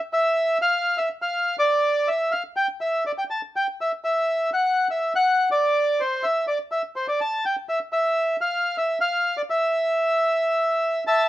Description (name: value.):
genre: tango.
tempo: 123 BPM.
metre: 4/4.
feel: rubato.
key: unclear.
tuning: A4 = 440 Hz.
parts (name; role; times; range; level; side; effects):
bandoneon; solo; 0.1-11.3 s; C5 to A5; -20 LUFS; equal; none.
room: light reverb.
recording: minimal, uncompressed stereo recording.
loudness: -20 LUFS.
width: side -15 dB against mid.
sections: 0.0-11.3 A section.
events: none.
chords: none.